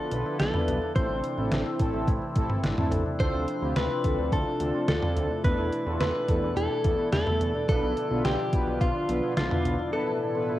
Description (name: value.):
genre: synth-pop.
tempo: 107 BPM.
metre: 4/4.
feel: straight.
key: A minor.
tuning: A4 = 440 Hz.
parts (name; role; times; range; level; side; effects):
direct-recorded clean electric guitar; melody; 0.0-10.6 s; F4 to C5; -30 LUFS; equal; phaser, cassette tape.
warm analog pad; sustained chords; 0.0-10.6 s; A2 to B4; -35 LUFS; right 1 dB; lush chorus, cassette tape.
cimbalom; arpeggios; 0.0-10.6 s; C4 to F4; -34 LUFS; left 2 dB; cassette tape, analog delay.
analog synth brass; accompaniment; 0.1-10.6 s; A3 to B4; -33 LUFS; equal; chorus, cassette tape.
fat analog bass; bass; 0.1-9.8 s; A1 to E2; -31 LUFS; equal; none.
detuned 8-bit digital drum machine; drums; 0.1-9.8 s; hi-hat, kick drum, snare drum, toms; -28 LUFS; equal; overdrive, cassette tape.
room: moderate digital room reverb, RT60 1.1 s, digital ambience.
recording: home recording on cassette.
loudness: -24 LUFS.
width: side -14 dB against mid.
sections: 0.0-10.6 A section.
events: none.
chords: 0.0 Bdim; 1.0 Am; 3.2 Dm7; 5.4 Esus4; 7.7 Bdim; 9.9 Esus4.